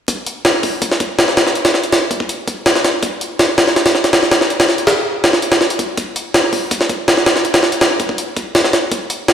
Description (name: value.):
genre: drum and bass.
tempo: 163 BPM.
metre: 4/4.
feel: straight.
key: none.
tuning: none.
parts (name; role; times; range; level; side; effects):
jungle sampler-style drum kit; drums; 0.1-9.3 s; hi-hat, kick drum, snare drum; -12 LUFS; equal; high-pass filter on hats, high-pass filter on kick, high-pass filter on snare.
room: wet lush hall reverb, RT60 1.8 s.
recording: played on a big sound system in a bare room, stone room reverb, vinyl crackle.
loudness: -12 LUFS.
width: side -8 dB against mid.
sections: 0.1-9.3 A section.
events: none.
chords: none.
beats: | 0.08 0.45 0.82 1.19 | 1.56 1.93 2.29 2.66 | 3.03 3.40 3.77 4.13 | 4.50 4.87 5.24 5.61 | 5.97 6.34 6.71 7.08 | 7.45 7.81 8.18 8.55 | 8.92 9.29.